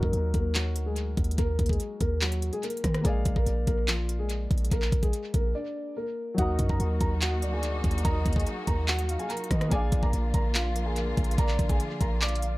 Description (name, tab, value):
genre	hip hop, trap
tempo	144 BPM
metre	4/4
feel	half-time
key	Eb harmonic minor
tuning	A4 = 440 Hz
part	dark concert grand piano	melody	0.0-12.6 s	F3 to D6	-33 LUFS	equal	tape echo
part	warm grand piano	accompaniment	0.0-12.6 s	Gb3 to F5	-38 LUFS	left 2 dB	tape echo
part	warm 808-style bass	bass	0.0-12.6 s	Bb1 to Eb3	-28 LUFS	equal	none
part	trap drum kit	drums	0.0-12.5 s	handclaps, hi-hat, kick drum, rim click	-28 LUFS	equal	overdrive
part	warm velvety synth lead	second line	6.4-12.6 s	Bb4 to F5	-38 LUFS	right 1 dB	chorus, tape echo
part	warm studio string section	sustained chords	6.4-12.6 s	D3 to Gb4	-36 LUFS	left 1 dB	none
room	small room ambience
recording	echo-heavy mix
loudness	-25 LUFS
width	side -19 dB against mid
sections	0.0-6.4 A section; 6.4-12.6 B section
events	break 5.5-6.4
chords	0.0 Ebm; 3.0 Bb; 6.4 Ebm; 9.7 Bb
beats	0.13 0.55 0.96 | 1.38 1.80 2.21 2.63 | 3.05 3.46 3.88 4.30 | 4.71 5.13 5.55 5.96 | 6.38 6.80 7.21 7.63 | 8.05 8.46 8.88 9.30 | 9.71 10.13 10.55 10.96 | 11.38 11.80 12.21